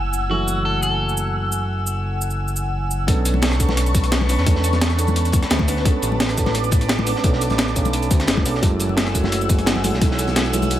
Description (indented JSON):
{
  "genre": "liquid drum and bass",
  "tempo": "173 BPM",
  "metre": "4/4",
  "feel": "straight",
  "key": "B dorian",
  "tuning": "A4 = 444 Hz",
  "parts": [
    { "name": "felt-muted upright piano", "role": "accompaniment", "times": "0.0-10.8 s", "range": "E3 to B4", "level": "-25 LUFS", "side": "right 3 dB", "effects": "dub echo" },
    { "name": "airy breathy pad", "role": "sustained chords", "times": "0.0-10.8 s", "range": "B4 to E6", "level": "-27 LUFS", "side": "equal", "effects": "chorus, phaser, sidechain pumping" },
    { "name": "smooth synth bass", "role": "bass", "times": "0.0-10.8 s", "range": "F#1 to E2", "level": "-22 LUFS", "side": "equal", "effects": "none" },
    { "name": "breakbeat sampler-style drum kit", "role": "drums", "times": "0.1-10.8 s", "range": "cabasa, hi-hat, rim click, snare drum", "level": "-24 LUFS", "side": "equal", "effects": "studio ambience" },
    { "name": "electric guitar at the edge of break-up", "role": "melody", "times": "0.3-2.7 s", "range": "F#4 to A4", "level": "-27 LUFS", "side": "left 2 dB", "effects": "dub echo" },
    { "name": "crunchy breakbeat drum kit", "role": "drums", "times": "3.1-10.8 s", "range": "hi-hat, snare drum", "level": "-28 LUFS", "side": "equal", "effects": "high-pass filter on hats, studio ambience, high-pass filter on snare, high-pass filter on room" },
    { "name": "electronic kick drum", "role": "drums", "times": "3.1-10.1 s", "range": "none", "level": "-19 LUFS", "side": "equal", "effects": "studio ambience" },
    { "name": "congas", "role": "percussion", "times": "3.1-10.7 s", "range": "none", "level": "-28 LUFS", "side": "left 4 dB", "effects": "none" }
  ],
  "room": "little or no reverb",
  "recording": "none",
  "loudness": "-17 LUFS",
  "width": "side -12 dB against mid",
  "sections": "0.0-3.1 A section; 3.1-10.8 B section",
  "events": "drop 3.1-10.8",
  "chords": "0.0 F#m9; 3.1 Bm9; 8.6 F#m9",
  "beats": "| 0.30 0.65 1.00 1.34 | 1.69 2.04 2.39 2.73 | 3.08 3.43 3.77 4.12 | 4.47 4.81 5.16 5.51 | 5.85 6.20 6.55 6.89 | 7.24 7.59 7.93 8.28 | 8.63 8.97 9.32 9.67 | 10.02 10.36 10.71"
}